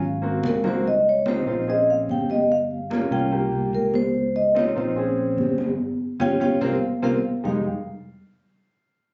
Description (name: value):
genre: Afro-Cuban jazz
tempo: 146 BPM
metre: 4/4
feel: straight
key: F minor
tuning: A4 = 438 Hz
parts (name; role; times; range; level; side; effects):
- vibraphone with soft mallets; melody; 0.0-7.6 s; Bb4 to G5; -26 LUFS; equal; none
- warm baby grand piano; accompaniment; 0.0-7.6 s; Ab3 to Ab4; -29 LUFS; equal; none
- fingered electric bass; bass; 0.0-7.6 s; F1 to Db2; -33 LUFS; equal; none
- congas; percussion; 0.0-7.5 s; none; -28 LUFS; equal; none
room: light reverb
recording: recorded on a phone in the room, club reverb, compression, nothing above 7.8 kHz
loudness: -23 LUFS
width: mono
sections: 0.8-7.4 A section; 7.4-9.1 B section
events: drum fill 0.4-0.8; band accent 5.8-7.4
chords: 0.0 Ab7; 0.8 Dbmaj9; 1.7 Bbm9; 2.5 Gm7b5; 3.3 C7sus4; 4.1 Dbmaj9; 5.0 Bbm9; 5.8 Fsus2/G; 6.6 C7sus4; 7.4 Fm9